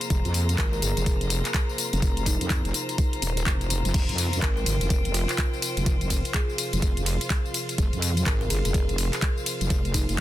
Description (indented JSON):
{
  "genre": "bass house",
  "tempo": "125 BPM",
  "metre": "4/4",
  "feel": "swing 62% on 16ths",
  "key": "F minor",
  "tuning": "A4 = 440 Hz",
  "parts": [
    { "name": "dark analog pad", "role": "sustained chords", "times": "0.0-10.2 s", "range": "C4 to F5", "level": "-39 LUFS", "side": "equal", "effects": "none" },
    { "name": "garage drum kit", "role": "drums", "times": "0.0-10.2 s", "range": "crash cymbal, handclaps, hi-hat, ride cymbal, tambourine", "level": "-29 LUFS", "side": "left 2 dB", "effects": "none" },
    { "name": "clear chamber string section", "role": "texture", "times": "0.0-10.2 s", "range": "F4 to Bb5", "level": "-35 LUFS", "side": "left 2 dB", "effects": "sidechain pumping" },
    { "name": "wobble bass", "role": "bass", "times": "0.1-10.2 s", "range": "Eb1 to F2", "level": "-26 LUFS", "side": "equal", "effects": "chorus, sidechain pumping" },
    { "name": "electronic kick drum", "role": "drums", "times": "0.1-10.2 s", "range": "none", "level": "-25 LUFS", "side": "equal", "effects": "overdrive" },
    { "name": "kalimba", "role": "melody", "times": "0.6-10.2 s", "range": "Eb4 to Bb4", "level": "-34 LUFS", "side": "right 1 dB", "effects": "ping-pong delay" }
  ],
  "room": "little or no reverb",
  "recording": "dense, heavily limited modern master",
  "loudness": "-22 LUFS",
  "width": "side -14 dB against mid",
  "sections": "0.0-10.2 A section",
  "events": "none",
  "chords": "0.0 F5"
}